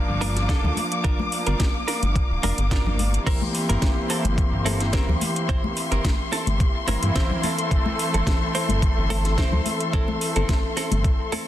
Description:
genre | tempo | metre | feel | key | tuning
nu-disco, nu disco | 108 BPM | 4/4 | straight | unclear | A4 = 444 Hz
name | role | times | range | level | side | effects
warm analog pad | accompaniment | 0.0-11.1 s | E3 to D5 | -29 LUFS | equal | chorus, sidechain pumping, dub echo
dark studio string section | sustained chords | 0.0-11.5 s | Bb3 to D6 | -29 LUFS | left 3 dB | sidechain pumping
chorused synth bass | bass | 0.0-11.1 s | D1 to G2 | -23 LUFS | equal | none
direct-recorded clean electric guitar | riff | 0.2-11.5 s | C4 to C5 | -31 LUFS | right 3 dB | wide subtle chorus, vintage 12-bit sampler grit, dub echo
house drum kit | drums | 0.2-11.4 s | crash cymbal, hi-hat, snare drum | -30 LUFS | equal | overdrive
congas | percussion | 0.2-11.4 s | none | -32 LUFS | left 4 dB | none
electronic kick drum | drums | 0.5-11.2 s | none | -22 LUFS | equal | none
room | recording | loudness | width
little or no reverb | dense, heavily limited modern master, lossy compression artefacts | -20 LUFS | side -12 dB against mid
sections
0.0-11.5 A section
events
none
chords
0.0 Bb/G; 3.3 C7/G; 7.4 Am/G

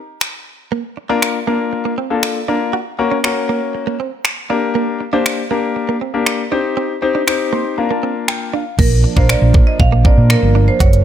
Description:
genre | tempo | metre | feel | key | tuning
dance-pop | 119 BPM | 4/4 | straight | Bb major | A4 = 443 Hz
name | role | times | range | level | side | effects
pop drum kit | drums | 0.2-11.0 s | crash cymbal, finger snaps, hi-hat, kick drum | -16 LUFS | equal | none
direct-recorded clean electric guitar | riff | 0.7-10.9 s | Bb3 to Gb4 | -23 LUFS | right 8 dB | wide subtle chorus
warm concert grand piano | accompaniment | 1.1-10.8 s | Bb3 to C6 | -18 LUFS | left 5 dB | sidechain pumping
marimba with hard mallets | melody | 8.8-11.0 s | Bb4 to F5 | -19 LUFS | right 5 dB | none
soft supersaw | sustained chords | 8.8-11.0 s | F3 to Bb4 | -23 LUFS | right 4 dB | sidechain pumping
hollow-body short-scale fingered electric bass | bass | 8.8-11.0 s | Gb1 to Bb2 | -12 LUFS | right 1 dB | sidechain pumping
room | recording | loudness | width
digital ambience | none | -14 LUFS | side -10 dB against mid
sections
0.0-8.8 A section; 8.8-11.0 B section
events
grand piano fill 7.3-8.8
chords
0.0 N.C.; 0.7 Bb; 2.7 Gb; 4.5 Gm; 6.5 Cm; 7.8 Bb

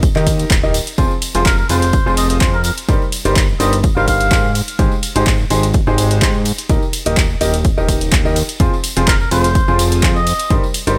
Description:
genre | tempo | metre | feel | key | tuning
piano house | 126 BPM | 4/4 | swing 54% on 16ths | F minor | A4 = 439 Hz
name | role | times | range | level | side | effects
fat analog bass | bass | 0.0-11.0 s | Eb1 to Ab2 | -20 LUFS | equal | sidechain pumping
electronic kick drum | drums | 0.0-10.6 s | none | -19 LUFS | equal | none
punchy analog drum machine | drums | 0.0-11.0 s | handclaps, hi-hat, ride cymbal | -23 LUFS | equal | none
tambourine | percussion | 0.0-11.0 s | none | -31 LUFS | equal | none
clear upright piano | riff | 0.2-11.0 s | Eb3 to Eb5 | -22 LUFS | equal | sidechain pumping
trumpet with cup mute | melody | 1.5-4.6, 9.1-10.6 s | Bb4 to F5 | -22 LUFS | equal | digital delay
room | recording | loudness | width
studio ambience | none | -15 LUFS | mono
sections
0.0-11.0 A section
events
none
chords
0.0 Eb; 1.0 Fm; 2.9 Cm7/G; 4.6 Abmaj7; 6.7 Eb; 8.6 Fm

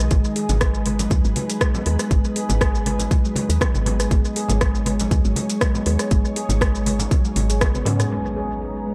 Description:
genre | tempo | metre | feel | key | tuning
afro house | 120 BPM | 4/4 | swing 54% on 16ths | G# minor | A4 = 441 Hz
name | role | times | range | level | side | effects
ethereal airy pad | sustained chords | 0.0-8.9 s | G#3 to A#5 | -34 LUFS | equal | ensemble chorus, built-in reverb, sidechain pumping
handpan | arpeggios | 0.0-8.9 s | F#3 to G#4 | -28 LUFS | equal | sidechain pumping, low-pass filter, tape echo
woody FM bass | bass | 0.0-8.1 s | G#1 to G#2 | -24 LUFS | equal | sidechain pumping
afro-pop drum kit | drums | 0.0-8.1 s | hi-hat, rim click, shaker, toms | -28 LUFS | equal | dub echo
electronic kick drum | drums | 0.1-7.7 s | none | -22 LUFS | equal | none
congas | percussion | 0.5-8.0 s | none | -33 LUFS | equal | dub echo
impact | sound effects | 8.1-8.9 s | none | -34 LUFS | equal | none
room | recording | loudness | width
light reverb, digital ambience | echo-heavy mix | -20 LUFS | mono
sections
0.0-8.1 A section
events
drum fill 7.6-8.1; impact 8.1-8.9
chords
0.0 G#m

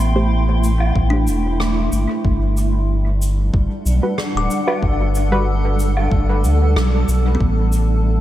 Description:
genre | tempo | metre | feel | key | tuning
ambient dub | 93 BPM | 4/4 | straight | unclear | A4 = 440 Hz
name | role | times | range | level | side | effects
granular cloud pad | sustained chords | 0.0-8.2 s | G3 to C6 | -22 LUFS | right 1 dB | built-in reverb
kalimba | arpeggios | 0.0-8.2 s | B3 to D6 | -28 LUFS | left 3 dB | dub echo
warm sub bass | bass | 0.0-8.2 s | D1 to D2 | -17 LUFS | equal | tube saturation
filtered dub chord stab | stabs | 0.2-5.4 s | G3 to C5 | -26 LUFS | right 1 dB | chorus, cassette tape, dub echo
cabasa, woodblock and rim click | drums | 0.6-7.9 s | none | -29 LUFS | equal | studio reverb, dub echo
electronic kick drum | drums | 1.0-7.5 s | none | -20 LUFS | equal | overdrive, studio reverb
room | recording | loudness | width
studio reverb | none | -15 LUFS | side -13 dB against mid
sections
0.0-8.2 A section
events
none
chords
0.0 Am7; 2.2 Gmaj7; 7.4 A5

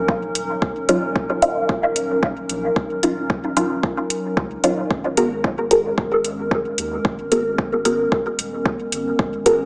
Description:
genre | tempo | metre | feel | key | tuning
dub techno | 112 BPM | 4/4 | swing 55% on 16ths | Eb minor | A4 = 439 Hz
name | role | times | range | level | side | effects
warbly tape-like pad | sustained chords | 0.0-9.7 s | Gb3 to Eb5 | -24 LUFS | equal | chorus, built-in reverb, sidechain pumping
filtered dub chord stab | stabs | 0.0-9.6 s | Gb3 to Bb4 | -19 LUFS | equal | phaser, sidechain pumping, dub echo
soft dub sub bass | bass | 0.0-9.7 s | Eb1 to Eb2 | -36 LUFS | equal | tube saturation, sidechain pumping
electronic kick drum | drums | 0.1-9.3 s | none | -22 LUFS | equal | studio reverb
electronic hi-hat | drums | 0.4-9.6 s | none | -23 LUFS | equal | overdrive, studio reverb
room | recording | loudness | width
wet echo chamber reverb, RT60 1.3 s, digital ambience | echo-heavy mix, small speaker sound | -18 LUFS | side -29 dB against mid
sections
0.0-9.7 A section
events
filter sweep on synth stab 0.0-9.7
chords
0.0 Ebm9; 4.9 Abm9

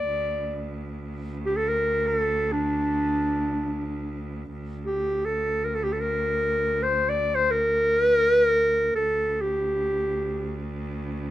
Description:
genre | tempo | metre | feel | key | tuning
Turkish makam ensemble | free time | none | none | D makam ussak | A4 = 440 Hz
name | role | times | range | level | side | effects
warm clarinet | melody | 0.0-10.6 s | D4 to D5 | -22 LUFS | equal | none
clear cello | drone | 0.0-11.3 s | D2 | -32 LUFS | right 1 dB | none
room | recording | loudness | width
light reverb | minimal, uncompressed stereo recording | -22 LUFS | side -13 dB against mid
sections
0.0-4.5 A section; 4.5-11.3 A section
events
none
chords
none

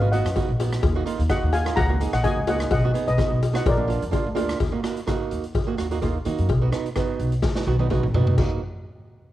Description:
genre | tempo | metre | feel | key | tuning
calypso | 127 BPM | 4/4 | swing 54% on 16ths | Eb minor | A4 = 442 Hz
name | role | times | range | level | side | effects
steel pan | melody | 0.0-4.3 s | Bb4 to Bb5 | -26 LUFS | left 1 dB | cassette tape
flamenco guitar | accompaniment | 0.0-8.6 s | Bb3 to Ab4 | -28 LUFS | right 7 dB | none
upright bass | bass | 0.0-8.6 s | Ab1 to Eb3 | -24 LUFS | equal | none
street-band drum kit | drums | 0.1-8.5 s | crash cymbal, hi-hat, kick drum, rim click, snare drum, toms | -27 LUFS | equal | none
cowbell | percussion | 0.4-8.6 s | none | -30 LUFS | left 7 dB | none
room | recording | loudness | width
light reverb, studio reverb | home recording on cassette, faint mains hum | -20 LUFS | side -14 dB against mid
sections
0.0-4.6 A section; 4.6-8.4 B section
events
drum fill 7.4-8.4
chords
0.0 B; 0.8 Ebm7; 2.7 B; 3.7 Bb; 4.6 Ebm; 6.5 B; 8.4 Ebm

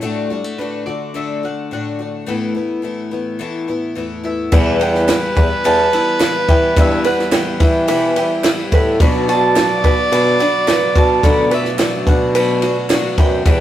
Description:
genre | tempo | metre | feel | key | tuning
indie folk with a building arrangement | 107 BPM | 4/4 | straight | unclear | A4 = 439 Hz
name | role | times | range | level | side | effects
fingerpicked plugged-in steel-string acoustic guitar | accompaniment | 0.0-4.5 s | E2 to F#4 | -24 LUFS | left 3 dB | none
picked twelve-string acoustic guitar | accompaniment | 0.0-13.6 s | E2 to G4 | -23 LUFS | left 5 dB | none
bowl-back mandolin | melody | 0.6-13.6 s | B4 to B5 | -24 LUFS | right 5 dB | none
warm trumpet | second line | 4.5-13.6 s | B4 to D5 | -20 LUFS | right 1 dB | none
felt-muted upright piano | accompaniment | 4.5-13.6 s | B1 to E5 | -28 LUFS | right 3 dB | none
mellow tonewheel organ | sustained chords | 4.5-13.6 s | D3 to G4 | -30 LUFS | left 1 dB | none
open-back banjo | arpeggios | 4.5-13.6 s | D4 to B4 | -22 LUFS | right 4 dB | none
dark bassoon | bass | 4.5-13.6 s | E2 to E3 | -18 LUFS | equal | none
compact cocktail drum kit | drums | 4.5-13.6 s | crash cymbal, kick drum, ride cymbal, snare drum | -16 LUFS | equal | none
group handclap | percussion | 5.1-13.0 s | none | -28 LUFS | right 3 dB | none
room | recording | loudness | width
light reverb | rough rehearsal-room recording | -13 LUFS | side -12 dB against mid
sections
0.0-4.5 A section; 4.5-13.6 B section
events
none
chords
0.0 D/A; 2.3 Asus2; 4.5 Em; 9.0 Bm

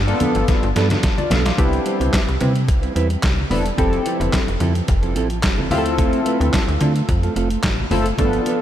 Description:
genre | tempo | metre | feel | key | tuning
early-eighties boogie funk | 109 BPM | 4/4 | straight | D dorian | A4 = 440 Hz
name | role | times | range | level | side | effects
slap-like FM bass | bass | 0.0-8.4 s | E1 to D3 | -21 LUFS | equal | none
chorused polysynth | accompaniment | 0.1-8.6 s | A3 to F5 | -23 LUFS | left 3 dB | none
mellow electric guitar | riff | 0.1-8.6 s | F3 to C5 | -24 LUFS | right 4 dB | lush chorus
detuned 8-bit digital drum machine | drums | 0.1-8.6 s | handclaps, hi-hat, kick drum, snare drum | -21 LUFS | equal | none
congas | percussion | 0.2-8.6 s | none | -30 LUFS | left 2 dB | none
room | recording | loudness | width
light reverb, digital ambience | none | -16 LUFS | side -11 dB against mid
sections
0.0-1.6 A section; 1.6-8.6 B section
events
drum fill 0.5-1.6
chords
0.0 G9; 1.6 Cmaj7; 3.8 Fmaj7; 5.7 Dm7

